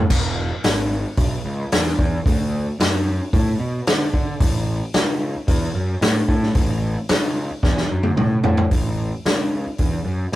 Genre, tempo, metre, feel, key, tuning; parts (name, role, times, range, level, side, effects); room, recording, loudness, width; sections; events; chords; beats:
blues rock power trio and southern rock; 112 BPM; 4/4; straight; A major; A4 = 440 Hz
fuzz picked electric bass; bass; 0.0-10.4 s; E1 to D3; -22 LUFS; equal; overdrive
vintage drum kit; drums; 0.1-10.4 s; crash cymbal, hi-hat, kick drum, snare drum, splash cymbal, toms; -20 LUFS; equal
moderate studio ambience, RT60 0.5 s; rough rehearsal-room recording, warm saturation; -18 LUFS; side -15 dB against mid
0.0-8.7 A section; 8.7-10.4 B section
drum fill 7.6-8.7
| 0.11 0.65 1.19 1.73 | 2.27 2.80 3.34 3.88 | 4.42 4.95 5.49 6.03 | 6.56 7.10 7.64 8.18 | 8.71 9.25 9.79 10.33